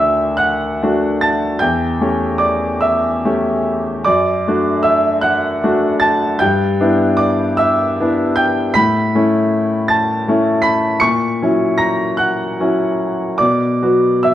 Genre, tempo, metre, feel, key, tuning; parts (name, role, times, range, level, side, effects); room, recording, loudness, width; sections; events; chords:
classical, romantic nocturne for solo piano; 46-54 BPM (dotted quarters); 12/8; rubato; D major; A4 = 440 Hz
bright grand piano; solo; 0.0-14.3 s; D2 to C#7; -13 LUFS; equal
moderate large studio reverb, RT60 0.9 s; worn, warbling old tape, cassette tape, warbly pitch drift; -13 LUFS; side -12 dB against mid
0.0-14.3 A section
0.0 D; 1.6 A7/E; 4.0 D/F#; 6.4 Em7/G; 8.8 A; 11.0 F#7/A#; 13.4 Bm